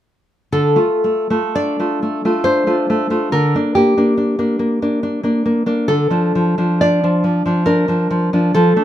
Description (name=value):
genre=romantic piece for solo classical guitar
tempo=56-73 BPM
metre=3/4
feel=rubato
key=D minor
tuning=A4 = 440 Hz
part: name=nylon-string guitar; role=solo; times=0.5-8.8 s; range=D3 to D5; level=-14 LUFS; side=equal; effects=none
room=moderate studio reverb, RT60 0.6 s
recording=minimal, uncompressed stereo recording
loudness=-14 LUFS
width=side -12 dB against mid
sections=0.5-8.8 A section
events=none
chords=0.5 Dm; 3.3 Gm/D; 5.9 Dm